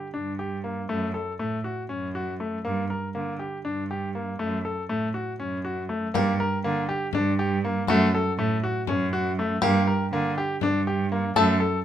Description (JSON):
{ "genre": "contemporary instrumental, chamber music in an uneven meter", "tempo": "241 BPM (eighths)", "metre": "7/8", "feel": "straight", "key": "unclear", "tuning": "A4 = 440 Hz", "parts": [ { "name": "bright grand piano", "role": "arpeggios", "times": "0.0-11.8 s", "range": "A3 to Bb4", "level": "-27 LUFS", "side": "left 2 dB", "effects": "none" }, { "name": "clear cello", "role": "bass", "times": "0.2-11.6 s", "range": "F#2 to D3", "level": "-28 LUFS", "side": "right 4 dB", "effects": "none" }, { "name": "frame drum", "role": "percussion", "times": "6.1-11.6 s", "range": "none", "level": "-33 LUFS", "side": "left 7 dB", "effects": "none" }, { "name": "bluegrass banjo", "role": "second line", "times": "6.2-11.8 s", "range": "F#4 to A4", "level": "-28 LUFS", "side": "left 2 dB", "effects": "none" } ], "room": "light reverb", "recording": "none", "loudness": "-24 LUFS", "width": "side -10 dB against mid", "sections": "0.0-6.1 A section; 6.1-11.8 B section", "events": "none", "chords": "0.0 Gm; 0.9 F#m; 2.6 Gm; 4.4 F#m; 6.1 Gm; 7.9 F#m; 9.6 Gm" }